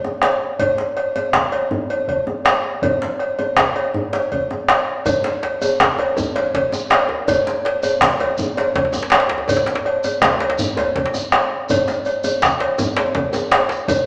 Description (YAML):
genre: west african traditional, West African drum ensemble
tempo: 108 BPM (dotted quarters)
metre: 12/8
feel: straight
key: none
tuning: none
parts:
  - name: bombo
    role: percussion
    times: 0.0-14.1 s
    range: none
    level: -22 LUFS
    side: equal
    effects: none
  - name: djembe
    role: percussion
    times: 0.0-14.1 s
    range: none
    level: -26 LUFS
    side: equal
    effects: none
  - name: cowbell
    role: percussion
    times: 0.2-14.1 s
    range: none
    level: -23 LUFS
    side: equal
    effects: none
  - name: djembe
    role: percussion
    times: 5.1-14.1 s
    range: none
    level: -29 LUFS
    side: equal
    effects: none
  - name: shekere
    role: percussion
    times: 5.1-14.1 s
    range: none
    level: -34 LUFS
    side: equal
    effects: none
room: wet large studio reverb, RT60 1.4 s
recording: band playing live in one room, small speaker sound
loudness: -19 LUFS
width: mono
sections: 0.0-5.1 A section; 5.1-14.1 B section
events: none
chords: none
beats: 0.04 | 0.60 1.16 1.72 2.27 | 2.83 3.39 3.94 4.50 | 5.05 5.61 6.16 6.72 | 7.27 7.83 8.38 8.93 | 9.48 10.04 10.59 11.14 | 11.69 12.24 12.79 13.34 | 13.88